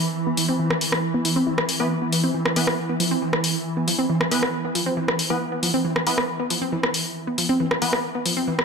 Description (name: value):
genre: driving peak-time techno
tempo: 137 BPM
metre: 4/4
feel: straight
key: unclear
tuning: A4 = 440 Hz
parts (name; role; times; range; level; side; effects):
- swarming drone; drone; 0.0-8.6 s; E3; -27 LUFS; right 1 dB; built-in reverb
- wide unison pluck; riff; 0.3-8.5 s; E3 to C4; -25 LUFS; equal; tape echo
- punchy analog drum machine; drums; 0.4-8.6 s; hi-hat, rim click; -23 LUFS; left 1 dB; none
- rave stab; stabs; 1.8-8.0 s; E3 to B4; -27 LUFS; equal; chorus, built-in reverb, tape echo
room: moderate lush hall reverb, RT60 1.8 s, digital ambience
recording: none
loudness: -20 LUFS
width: side -5 dB against mid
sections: 0.0-8.6 A section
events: filter sweep on synth arpeggio sound 0.0-8.6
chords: 0.0 E5